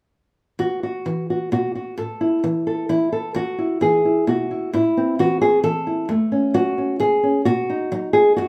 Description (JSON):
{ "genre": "folk, solo fingerstyle acoustic guitar", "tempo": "131 BPM", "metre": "3/4", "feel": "straight", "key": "E major", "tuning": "A4 = 440 Hz", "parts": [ { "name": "nylon-string guitar", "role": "solo", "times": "0.6-8.5 s", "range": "E2 to A4", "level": "-20 LUFS", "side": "equal", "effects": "none" } ], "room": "moderate large studio reverb, RT60 1.0 s", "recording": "band playing live in one room", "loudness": "-20 LUFS", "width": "mono", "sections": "0.6-3.3 A section; 3.3-8.5 B section", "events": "none", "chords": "0.6 Esus2; 2.0 A5; 3.3 Esus2; 4.7 Am; 6.1 F#m; 7.5 B", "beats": "| 0.60 1.06 1.52 | 1.98 2.43 2.88 | 3.35 3.81 4.27 | 4.73 5.19 5.64 | 6.09 6.55 7.00 | 7.46 7.92 8.38" }